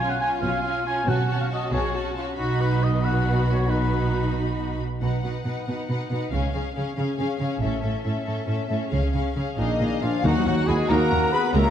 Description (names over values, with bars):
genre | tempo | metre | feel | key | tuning
cinematic | 92 BPM (dotted quarters) | 6/8 | straight | B lydian | A4 = 440 Hz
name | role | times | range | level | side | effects
rich symphonic violin section | melody | 0.0-11.7 s | D#5 to B5 | -34 LUFS | left 5 dB | none
warm oboe | second line | 0.0-4.4, 10.9-11.7 s | F#4 to G#5 | -28 LUFS | equal | none
warm symphonic violin section | second line | 0.0-11.7 s | D#4 to B5 | -33 LUFS | left 4 dB | none
rich symphonic viola section | accompaniment | 0.0-11.7 s | G#3 to F#4 | -30 LUFS | equal | none
warm symphonic cello section | bass | 0.0-11.6 s | C#2 to C#3 | -28 LUFS | right 1 dB | none
warm symphonic double bass section | bass | 0.0-11.6 s | A1 to D#2 | -27 LUFS | right 2 dB | none
timpani | percussion | 0.0-1.7, 10.2-10.9 s | B2 to D#3 | -29 LUFS | left 2 dB | none
hollow concert flute | second line | 9.6-11.7 s | D#5 to B5 | -32 LUFS | left 2 dB | none
mellow clarinet | second line | 9.6-11.7 s | A#3 to G#4 | -29 LUFS | left 3 dB | none
mellow French horn section | sustained chords | 9.6-11.7 s | D#3 to B3 | -29 LUFS | left 4 dB | none
warm trumpet | stabs | 9.6-11.7 s | D#4 to B4 | -28 LUFS | right 1 dB | none
mellow tuba | bass | 10.2-11.6 s | C#2 to D#2 | -28 LUFS | right 2 dB | none
room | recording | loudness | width
moderate scoring stage reverb, RT60 1.6 s | dark, warm production | -22 LUFS | side -9 dB against mid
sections
0.0-5.0 A section; 5.0-10.2 B section; 10.2-11.7 C section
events
none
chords
0.0 C#/B; 1.1 F#m/B; 2.4 B; 6.3 C#; 7.6 A; 8.9 C#; 9.6 A#7; 10.2 D#m